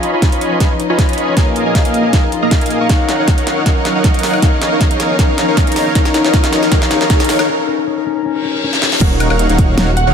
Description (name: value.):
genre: future bass.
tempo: 157 BPM.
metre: 4/4.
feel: swing 53% on 16ths, half-time.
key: Eb minor.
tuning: A4 = 439 Hz.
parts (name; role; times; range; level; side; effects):
dark studio string section; sustained chords; 0.0-10.1 s; Eb3 to Eb5; -24 LUFS; right 1 dB; sidechain pumping, low-pass filter.
concert harp; arpeggios; 0.0-10.1 s; Db4 to F5; -20 LUFS; left 7 dB; vintage 12-bit sampler grit, sidechain pumping, low-pass filter, digital delay.
dense compressed supersaw; riff; 0.0-10.1 s; Bb3 to Db6; -16 LUFS; right 1 dB; sidechain pumping, low-pass filter, digital delay.
pop drum kit; drums; 0.0-10.0 s; crash cymbal, hi-hat, snare drum, woodblock; -20 LUFS; equal; overdrive, high-pass filter on hats, high-pass filter on snare, high-pass filter on perc, high-pass filter on cymbals, high-pass filter on room.
electronic kick drum; drums; 0.2-9.7 s; none; -13 LUFS; equal; overdrive.
riser and reverse cymbal; sound effects; 5.7-9.0 s; none; -23 LUFS; left 1 dB; none.
wide detuned saw bass; bass; 9.0-10.1 s; Eb1; -15 LUFS; equal; chorus, sidechain pumping.
plucky unison lead; melody; 10.0-10.1 s; Gb5; -14 LUFS; right 5 dB; wide subtle chorus, sidechain pumping.
room: light reverb.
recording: none.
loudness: -11 LUFS.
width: side -7 dB against mid.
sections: 0.0-9.0 A section; 9.0-10.1 B section.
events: build-up 0.0-9.0; drum fill 0.0-7.5, 8.7; filter sweep on harp 0.0-9.0; break 7.5-9.0; reverse cymbal 8.2-9.0; drop 9.0-10.1.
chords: 0.0 Db9/F; 1.4 Bb7sus4; 2.9 Ebm7; 4.4 Fm7b5; 6.0 Db9; 7.5 Bbm/Db; 9.0 Ebm7.